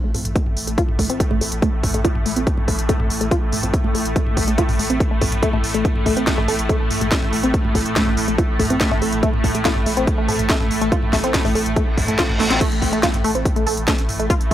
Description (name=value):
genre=driving peak-time techno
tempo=142 BPM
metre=4/4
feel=straight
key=A minor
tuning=A4 = 440 Hz
part: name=tight sequenced synth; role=riff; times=0.0-14.5 s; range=A3 to A4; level=-23 LUFS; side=equal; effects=chorus, tube saturation, sidechain pumping, tape echo
part: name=saturated sub bass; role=bass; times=0.0-14.5 s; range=A1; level=-27 LUFS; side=equal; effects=tube saturation, sidechain pumping, low-pass filter
part: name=swarming drone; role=drone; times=0.2-14.5 s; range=A2 to A3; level=-24 LUFS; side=right 1 dB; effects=built-in reverb, sidechain pumping
part: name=techno drum kit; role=drums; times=0.1-14.5 s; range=crash cymbal, hi-hat, snare drum, toms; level=-24 LUFS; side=equal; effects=sidechain pumping on hats, studio reverb, sidechain pumping on cymbals, sidechain pumping on toms
part: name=electronic kick drum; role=drums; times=0.4-14.5 s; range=none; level=-20 LUFS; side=equal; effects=studio reverb
part: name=reverse cymbal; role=sound effects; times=11.9-12.6 s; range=none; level=-26 LUFS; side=right 1 dB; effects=none
room=digital ambience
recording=dry, gritty hardware recording, transformer saturation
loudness=-16 LUFS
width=side -12 dB against mid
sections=0.0-12.6 A section; 12.6-14.5 B section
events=filter sweep on synth arpeggio sound 0.0-12.6; reverse cymbal 11.9-12.6; drum fill 12.4; drop 12.6-14.5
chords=none